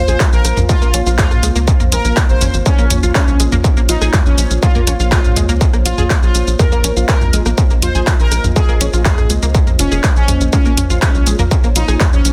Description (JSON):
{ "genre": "melodic techno", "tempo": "122 BPM", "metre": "4/4", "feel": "straight", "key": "Bb minor", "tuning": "A4 = 445 Hz", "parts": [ { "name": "analog synth brass", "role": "melody", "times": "0.0-12.3 s", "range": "Db4 to C5", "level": "-24 LUFS", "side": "equal", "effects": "chorus, sidechain pumping, tape echo" }, { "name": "dark analog pad", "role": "sustained chords", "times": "0.0-12.3 s", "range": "Bb3 to F5", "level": "-27 LUFS", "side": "equal", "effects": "chorus, phaser, sidechain pumping" }, { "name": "tight sequencer bass", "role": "bass", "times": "0.0-12.3 s", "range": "F1 to Bb2", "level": "-19 LUFS", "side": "equal", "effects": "sidechain pumping" }, { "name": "tight sequenced synth", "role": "arpeggios", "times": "0.1-12.0 s", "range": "Ab3 to Db6", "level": "-26 LUFS", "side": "equal", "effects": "chorus, phaser, sidechain pumping, dub echo" }, { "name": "techno drum kit", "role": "drums", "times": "0.1-12.3 s", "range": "handclaps, hi-hat, rim click, shaker, toms", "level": "-21 LUFS", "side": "equal", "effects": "overdrive" }, { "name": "electronic kick drum", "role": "drums", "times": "0.2-12.1 s", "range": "none", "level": "-16 LUFS", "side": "equal", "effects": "distortion, overdrive" } ], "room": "little or no reverb", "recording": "dense, heavily limited modern master", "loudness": "-13 LUFS", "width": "mono", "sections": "0.0-12.3 A section", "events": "none", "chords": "0.0 Bbm7" }